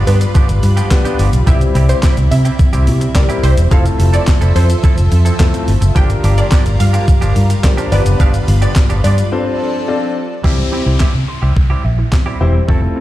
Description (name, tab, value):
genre	dance-pop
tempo	107 BPM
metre	4/4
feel	straight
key	unclear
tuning	A4 = 440 Hz
part	lush unison pad	sustained chords	0.0-10.4 s	C3 to E5	-23 LUFS	right 1 dB	chorus, sidechain pumping
part	direct-recorded clean electric guitar	riff	0.0-13.0 s	F3 to A4	-25 LUFS	right 6 dB	analog chorus
part	wide unison pluck	melody	0.1-9.6 s	B4 to G5	-23 LUFS	right 1 dB	sidechain pumping, digital delay
part	vintage muted fingered electric bass	bass	0.1-12.9 s	E1 to C3	-12 LUFS	equal	sidechain pumping
part	clean 12-bit digital drum machine	drums	0.1-12.8 s	handclaps, hi-hat, kick drum, shaker, snare drum	-13 LUFS	equal	none
part	warm baby grand piano	accompaniment	0.9-13.0 s	G3 to D5	-20 LUFS	left 4 dB	sidechain pumping
part	hollow square pluck	arpeggios	10.4-13.0 s	E3 to E6	-25 LUFS	right 4 dB	chorus, sidechain pumping, digital delay
part	downlifter	sound effects	10.4-13.0 s	none	-28 LUFS	left 2 dB	none
room	digital ambience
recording	played on a big sound system in a bare room, stone room reverb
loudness	-10 LUFS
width	side -15 dB against mid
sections	0.0-10.4 A section; 10.4-13.0 B section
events	drop 0.0-10.4; break 9.3-10.4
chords	0.0 G7; 1.5 C; 3.7 Fmaj7; 6.0 Gm7; 7.9 G7; 9.3 F6; 10.4 C